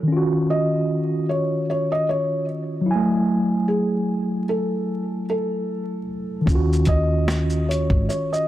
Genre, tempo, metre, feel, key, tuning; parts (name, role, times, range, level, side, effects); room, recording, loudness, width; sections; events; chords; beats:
lo-fi hip hop; 75 BPM; 4/4; swing 59% on 16ths; A4 = 440 Hz
mellow tine electric piano; accompaniment; 0.0-8.5 s; Eb3 to Ab5; -22 LUFS; equal; medium stereo tremolo, cassette tape
felt-muted upright piano; melody; 0.5-8.5 s; Ab4 to Eb5; -26 LUFS; equal; analog delay
upright bass; bass; 6.5-8.1 s; Ab1 to Eb2; -22 LUFS; equal
boom bap sampler-style drum kit; drums; 6.5-8.5 s; hi-hat, kick drum, shaker, snare drum; -21 LUFS; equal
little or no reverb; vinyl crackle; -19 LUFS; side -14 dB against mid
0.0-6.5 A section; 6.5-8.5 B section
0.1 Ebm9; 2.9 Gbm9; 6.5 Ebm9
| 0.08 0.88 1.68 2.48 | 3.28 4.08 4.88 5.68 | 6.48 7.28 8.08